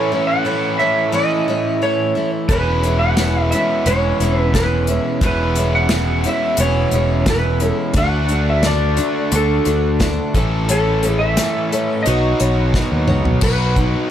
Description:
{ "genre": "folk rock and heartland rock", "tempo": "88 BPM", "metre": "4/4", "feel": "straight", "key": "E major", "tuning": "A4 = 440 Hz", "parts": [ { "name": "electric slide guitar", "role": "melody", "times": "0.0-14.1 s", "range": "A4 to F#5", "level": "-20 LUFS", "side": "right 1 dB", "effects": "none" }, { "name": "picked twelve-string acoustic guitar", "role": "accompaniment", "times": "0.0-14.1 s", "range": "E2 to C#5", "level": "-22 LUFS", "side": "left 2 dB", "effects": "none" }, { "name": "biting overdriven guitar", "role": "riff", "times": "0.0-14.1 s", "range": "E2 to A4", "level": "-22 LUFS", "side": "right 1 dB", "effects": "none" }, { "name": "picked electric bass", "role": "bass", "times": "2.5-13.9 s", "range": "E1 to D#2", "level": "-18 LUFS", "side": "equal", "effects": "none" }, { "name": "unplugged drum kit", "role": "drums", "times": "2.5-13.9 s", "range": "crash cymbal, hi-hat, kick drum, snare drum, toms", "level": "-20 LUFS", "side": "equal", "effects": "none" } ], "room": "small room ambience", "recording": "none", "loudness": "-14 LUFS", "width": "side -10 dB against mid", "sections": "0.0-13.4 A section", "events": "drum fill 12.7-13.4", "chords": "0.0 A; 2.5 E6; 8.0 D; 10.4 A; 12.1 Badd9; 13.4 B" }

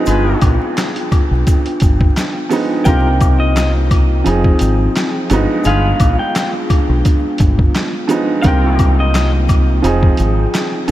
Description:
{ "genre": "hip hop, boom-bap hip-hop", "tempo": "86 BPM", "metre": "4/4", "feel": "swing 55% on 16ths", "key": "unclear", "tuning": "A4 = 442 Hz", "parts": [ { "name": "warm upright piano", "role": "accompaniment", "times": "0.0-10.9 s", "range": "G2 to Ab4", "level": "-18 LUFS", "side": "right 2 dB", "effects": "cassette tape, high-pass filter, low-pass filter" }, { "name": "mellow tonewheel organ", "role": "sustained chords", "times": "0.0-10.9 s", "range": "C3 to G5", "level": "-23 LUFS", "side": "left 1 dB", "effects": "fast rotary speaker, high-pass filter, low-pass filter" }, { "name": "clear horn section", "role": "stabs", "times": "0.1-8.9 s", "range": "F4 to B4", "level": "-27 LUFS", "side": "left 3 dB", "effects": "none" }, { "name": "deep dub fingered electric bass", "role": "bass", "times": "0.1-10.9 s", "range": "F1 to C2", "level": "-15 LUFS", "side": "equal", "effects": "none" }, { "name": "trip hop sampler-style drum kit", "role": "drums", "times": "0.1-10.9 s", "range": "handclaps, hi-hat, kick drum, snare drum", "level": "-16 LUFS", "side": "equal", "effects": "vintage 12-bit sampler grit" }, { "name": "tube shaker and woodblock", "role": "percussion", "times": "0.1-10.9 s", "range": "none", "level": "-32 LUFS", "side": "left 6 dB", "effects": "none" }, { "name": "electric guitar at the edge of break-up", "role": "melody", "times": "2.9-9.3 s", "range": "Eb5 to G5", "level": "-24 LUFS", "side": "left 1 dB", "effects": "high-pass filter, low-pass filter, ping-pong delay" } ], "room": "moderate huge ambient reverb, RT60 7.7 s", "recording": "dreamy mix soaked in reverb, vinyl crackle", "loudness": "-12 LUFS", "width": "side -14 dB against mid", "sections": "0.0-10.9 A section", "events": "break 0.1-2.9", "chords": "0.0 G7b9b13; 2.9 Cm7; 4.3 Fm7; 5.3 G7b9b13; 8.4 Cm7; 9.8 Fm7" }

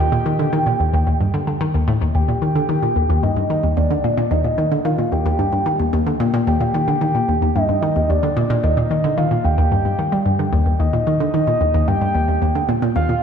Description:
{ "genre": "ambient", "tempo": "111 BPM", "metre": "4/4", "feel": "straight", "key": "Eb major", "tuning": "A4 = 441 Hz", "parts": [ { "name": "soft octave-layered synth lead", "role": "melody", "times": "0.0-13.2 s", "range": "D5 to G5", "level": "-21 LUFS", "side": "equal", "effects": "chorus, cassette tape, ping-pong delay" }, { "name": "hollow square pluck", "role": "riff", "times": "0.0-13.2 s", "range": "Eb2 to G3", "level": "-17 LUFS", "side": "equal", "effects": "chorus, phaser, ping-pong delay" } ], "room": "wet concert hall reverb, RT60 2.2 s", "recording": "dark, warm production", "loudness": "-16 LUFS", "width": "side -7 dB against mid", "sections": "0.0-13.2 A section", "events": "none", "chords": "0.0 Eb" }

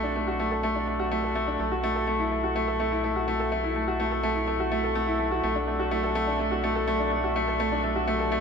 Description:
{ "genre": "piano and strings electronica", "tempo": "125 BPM", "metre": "4/4", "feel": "straight", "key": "unclear", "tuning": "A4 = 440 Hz", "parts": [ { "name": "bright upright piano", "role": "riff", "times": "0.0-8.4 s", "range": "A3 to A4", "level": "-25 LUFS", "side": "left 1 dB", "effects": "tape echo" }, { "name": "round analog bass", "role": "bass", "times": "0.0-8.4 s", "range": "B1", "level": "-33 LUFS", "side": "right 1 dB", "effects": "none" } ], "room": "wet huge ambient reverb, RT60 4.1 s", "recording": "none", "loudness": "-24 LUFS", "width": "side -6 dB against mid", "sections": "0.0-8.4 A section", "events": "build-up 0.0-8.4", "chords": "0.0 Bm7; 1.6 F#m7/B; 5.4 Bm7" }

